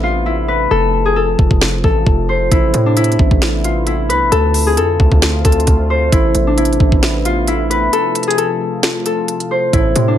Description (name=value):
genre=hip hop, trap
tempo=133 BPM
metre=4/4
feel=half-time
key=unclear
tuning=A4 = 440 Hz
part: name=Celtic harp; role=melody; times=0.0-10.2 s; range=D4 to C5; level=-16 LUFS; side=left 2 dB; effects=none
part: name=sweeping resonant pad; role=sustained chords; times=0.0-10.2 s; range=C3 to F4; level=-23 LUFS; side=left 1 dB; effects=chorus
part: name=hard-hitting 808-style bass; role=bass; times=0.0-10.2 s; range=F1 to A2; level=-17 LUFS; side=equal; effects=none
part: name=trap drum kit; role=drums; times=1.4-10.1 s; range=finger snaps, hi-hat, kick drum, snare drum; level=-14 LUFS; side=equal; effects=none
part: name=glassy wavetable pluck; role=accompaniment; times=9.7-10.2 s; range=A2 to C3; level=-19 LUFS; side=equal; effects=chorus
room=light reverb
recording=none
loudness=-12 LUFS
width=side -10 dB against mid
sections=0.0-10.2 A section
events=break 0.0-2.5, 7.9-9.7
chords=0.0 Amadd9; 0.7 F; 2.5 Amadd9; 4.3 Dm7; 6.1 Amadd9; 7.9 F